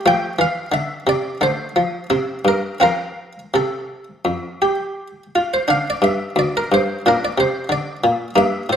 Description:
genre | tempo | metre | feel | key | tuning
classical, baroque-style suite movement for harpsichord | 81-91 BPM | 4/4 | rubato | F major, D minor from 5.7 s | A4 = 440 Hz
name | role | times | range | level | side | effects
buff-stop harpsichord | solo | 0.0-8.8 s | D2 to G5 | -17 LUFS | equal | none
room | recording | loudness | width
wet stone room reverb, RT60 1.3 s | none | -17 LUFS | side -8 dB against mid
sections
0.0-5.7 A section; 5.7-8.8 A section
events
none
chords
0.1 F; 1.4 Dm; 2.1 C5; 2.8 F; 5.7 Dm11; 7.0 Bb

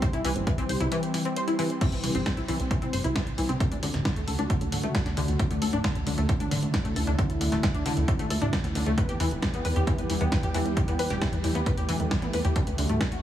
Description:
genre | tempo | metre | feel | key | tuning
uplifting trance | 134 BPM | 4/4 | straight | unclear | A4 = 440 Hz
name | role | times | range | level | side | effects
lush unison pad | sustained chords | 0.0-13.2 s | D3 to G4 | -32 LUFS | right 1 dB | chorus, sidechain pumping
wide unison pluck | arpeggios | 0.0-13.2 s | D3 to C5 | -31 LUFS | left 2 dB | ensemble chorus, sidechain pumping, tape echo
electronic kick drum | drums | 0.0-13.1 s | none | -27 LUFS | equal | none
punchy analog drum machine | drums | 0.0-13.2 s | crash cymbal, hi-hat, snare drum | -34 LUFS | equal | none
plucky analog bass | bass | 0.1-13.2 s | D1 to E2 | -29 LUFS | equal | sidechain pumping
room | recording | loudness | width
light reverb, digital ambience | heavily compressed radio sound, multiband compression, small room ambience | -24 LUFS | side -11 dB against mid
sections
0.0-13.2 A section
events
filter sweep on analog synth pad 0.0-13.2; kick drops out 0.9-1.8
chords
0.0 C; 3.6 D; 9.0 Em; 12.6 D

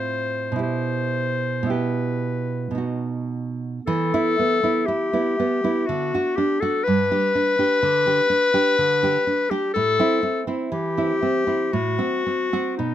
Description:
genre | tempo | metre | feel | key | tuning
romantic duo for clarinet and classical guitar | 54-63 BPM | 3/4 | rubato | E minor | A4 = 439 Hz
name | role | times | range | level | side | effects
bright clarinet | melody | 0.0-12.9 s | D#4 to C5 | -21 LUFS | left 4 dB | none
nylon-string guitar | accompaniment | 0.0-12.9 s | G2 to G4 | -24 LUFS | right 4 dB | none
room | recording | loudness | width
light reverb | close, detailed microphones | -19 LUFS | side -11 dB against mid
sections
0.0-3.9 A section; 3.9-12.9 B section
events
none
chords
0.0 F/A; 0.6 Em/B; 2.8 B; 3.9 Em; 5.9 D; 6.8 G; 9.7 Am; 11.7 F#dim/A

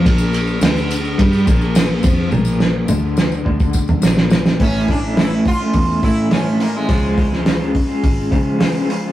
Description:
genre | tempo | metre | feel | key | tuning
psychedelic rock | 105 BPM | 4/4 | straight | unclear | A4 = 440 Hz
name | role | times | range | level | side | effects
electric guitar at the edge of break-up | riff | 0.0-9.1 s | A2 to E#4 | -19 LUFS | equal | tremolo
fingered electric bass | bass | 0.0-9.1 s | G#1 to C#3 | -21 LUFS | equal | none
cloth-damped thuddy drum kit | drums | 0.1-9.0 s | hi-hat, kick drum, ride cymbal, snare drum, toms | -16 LUFS | equal | none
tambourine | percussion | 0.2-4.5 s | none | -35 LUFS | left 4 dB | none
sitar | melody | 4.6-7.9 s | G#3 to F4 | -24 LUFS | right 1 dB | slapback echo
room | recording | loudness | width
moderate stone room reverb, RT60 1.4 s | rough rehearsal-room recording, warm saturation | -14 LUFS | side -14 dB against mid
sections
0.0-4.6 A section; 4.6-9.1 B section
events
drum fill 2.3-4.6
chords
0.0 Bb5; 4.6 A; 6.9 C#

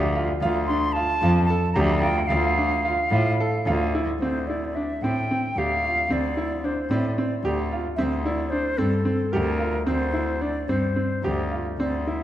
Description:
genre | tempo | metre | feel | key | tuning
contemporary instrumental, chamber music in an uneven meter | 222 BPM (eighths) | 7/8 | straight | D minor | A4 = 440 Hz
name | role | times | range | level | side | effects
hollow concert flute | melody | 0.0-12.2 s | A4 to C6 | -27 LUFS | equal | none
bright grand piano | arpeggios | 0.0-12.2 s | C4 to A4 | -26 LUFS | right 1 dB | none
rich cello | bass | 0.0-12.2 s | D2 to A2 | -25 LUFS | equal | none
room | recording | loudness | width
moderate concert hall reverb, RT60 2.1 s | dark, warm production | -21 LUFS | side -12 dB against mid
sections
0.0-4.2 A section; 4.2-12.2 B section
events
none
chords
0.0 Bb/D (rootless); 2.3 Dm; 4.2 D7(no3); 8.0 C5/D

